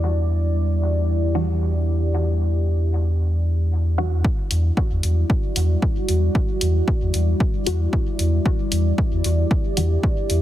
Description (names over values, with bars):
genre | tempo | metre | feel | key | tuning
dub techno | 114 BPM | 4/4 | straight | E minor | A4 = 440 Hz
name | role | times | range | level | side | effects
deep dark ambient pad | sustained chords | 0.0-10.4 s | G3 to D5 | -27 LUFS | equal | chorus, built-in reverb, sidechain pumping
soft dub sub bass | bass | 0.0-10.4 s | E2 | -19 LUFS | equal | sidechain pumping
filtered dub chord stab | stabs | 1.3-10.0 s | E3 to F#4 | -30 LUFS | equal | phaser, sidechain pumping, dub echo
electronic kick drum | drums | 4.2-10.1 s | none | -21 LUFS | equal | none
electronic hi-hat | drums | 4.5-10.4 s | none | -26 LUFS | left 1 dB | none
room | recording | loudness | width
little or no reverb | heavily compressed radio sound | -18 LUFS | side -13 dB against mid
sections
0.0-4.2 A section; 4.2-10.4 B section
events
filter sweep on synth stab 4.2-10.4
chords
0.0 Em7; 4.2 Em9